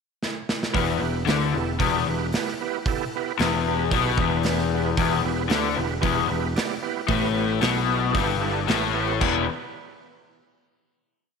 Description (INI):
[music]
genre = blues rock power trio and southern rock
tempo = 113 BPM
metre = 4/4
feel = straight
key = E minor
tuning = A4 = 439 Hz
[part]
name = big rock drum kit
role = drums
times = 0.2-9.3 s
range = crash cymbal, hi-hat, kick drum, snare drum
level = -28 LUFS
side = right 2 dB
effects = none
[part]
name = overdriven tonewheel organ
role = sustained chords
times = 0.7-9.5 s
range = B3 to D5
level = -29 LUFS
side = right 11 dB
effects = slow rotary speaker, chorus vibrato
[part]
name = raw garage guitar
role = riff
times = 0.7-9.4 s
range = E2 to E3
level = -24 LUFS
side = left 9 dB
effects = overdrive
[part]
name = modern bright picked electric bass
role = bass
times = 0.7-9.5 s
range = E1 to D2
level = -29 LUFS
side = right 3 dB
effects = none
[sound]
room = moderate echo chamber reverb, RT60 1.9 s, studio ambience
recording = 1960s-style stereo with parts hard left and right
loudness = -21 LUFS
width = side -5 dB against mid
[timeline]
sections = 0.0-0.7 pickup bar; 0.7-9.2 riff; 9.2-11.4 final chord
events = drum fill 0.2-0.7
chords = 0.0 N.C.; 0.7 Em